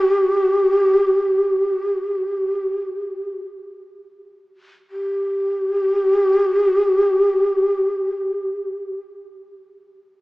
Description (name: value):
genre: japanese traditional, Japanese chamber music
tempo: free time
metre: none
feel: none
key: unclear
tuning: A4 = 439 Hz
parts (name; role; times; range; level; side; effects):
- breathy mellow shakuhachi; solo; 0.0-9.0 s; G4; -17 LUFS; equal; none
room: wet church reverb, RT60 3.4 s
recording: recorded in a church or concert hall, small speaker sound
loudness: -17 LUFS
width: side -20 dB against mid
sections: 0.0-4.9 A section; 4.9-10.2 B section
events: slowing down 0.0-4.9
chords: none